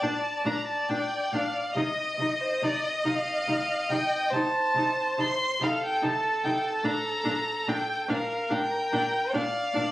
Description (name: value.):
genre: classical, slow romantic movement for string quartet.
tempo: 47 BPM (dotted quarters).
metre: 12/8.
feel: rubato.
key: Bb major.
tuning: A4 = 439 Hz.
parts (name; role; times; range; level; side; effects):
dark violin; melody; 0.0-9.9 s; C5 to C6; -28 LUFS; equal; none.
dark violin; second line; 0.0-9.9 s; A4 to Eb5; -30 LUFS; equal; none.
warm viola; accompaniment; 0.0-9.8 s; D4 to Eb4; -32 LUFS; equal; none.
warm cello; bass; 0.0-9.8 s; Bb2 to C3; -36 LUFS; right 1 dB; none.
room: moderate stone room reverb, RT60 0.9 s.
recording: recorded on a phone in the room, club reverb, compression.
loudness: -25 LUFS.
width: side -16 dB against mid.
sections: 0.0-9.9 A section.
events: none.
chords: 0.0 Bb; 1.7 F7/C; 6.8 Bb.